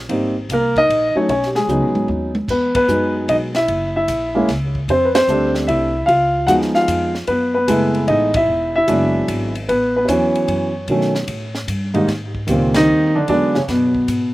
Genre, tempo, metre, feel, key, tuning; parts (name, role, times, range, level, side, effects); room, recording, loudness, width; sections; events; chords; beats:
jazz piano trio; 150 BPM; 3/4; swing 66% on 8ths; E major; A4 = 440 Hz
upright bass; bass; 0.0-14.3 s; E1 to B2; -25 LUFS; equal
warm grand piano; melody; 0.1-14.3 s; G#2 to F#5; -15 LUFS; equal; slapback echo
compact cocktail drum kit; drums; 0.1-14.2 s; crash cymbal, hi-hat, kick drum, ride cymbal, snare drum, toms; -28 LUFS; equal
little or no reverb; recorded outdoors, with no room sound; -15 LUFS; side -17 dB against mid
0.0-2.5 A section; 2.5-12.1 B section; 12.1-14.3 A section
drum fill 1.7-2.5; band accent 2.7, 5.1, 8.3, 12.7
0.1 Abadd9; 1.3 B; 2.5 Emaj9; 3.7 F#7; 4.9 F6; 6.1 C#7; 7.3 F#m11; 8.5 E7; 9.7 A69; 10.9 B7; 11.7 D#; 12.1 Abmaj9; 13.3 E7
| 0.09 0.49 0.89 | 1.29 1.69 2.09 | 2.49 2.89 3.29 | 3.69 4.09 4.49 | 4.89 5.29 5.69 | 6.09 6.49 6.89 | 7.29 7.69 8.09 | 8.49 8.88 9.28 | 9.68 10.08 10.48 | 10.88 11.28 11.68 | 12.08 12.48 12.88 | 13.28 13.68 14.08